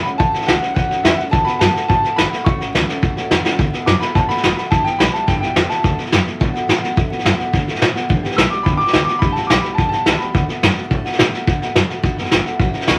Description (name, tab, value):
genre	rockabilly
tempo	213 BPM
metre	4/4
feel	straight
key	D major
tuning	A4 = 441 Hz
part	bright upright piano	melody	0.0-6.0, 8.4-10.5, 12.9 s	E5 to E6	-22 LUFS	equal	none
part	picked steel-string acoustic guitar	accompaniment	0.0-13.0 s	G2 to G4	-27 LUFS	equal	none
part	upright bass	bass	0.1-13.0 s	F#1 to A2	-26 LUFS	equal	none
part	vintage brush drum kit	drums	0.1-12.9 s	hi-hat, kick drum, snare drum	-19 LUFS	equal	none
room	moderate studio reverb, RT60 0.5 s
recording	vinyl crackle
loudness	-17 LUFS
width	mono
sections	0.0-3.6 A section; 3.6-13.0 A section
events	drum fill 3.4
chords	0.0 A6; 1.3 D6; 2.5 A6; 3.6 D6; 4.7 G6; 5.8 D6; 8.1 G6; 10.3 D6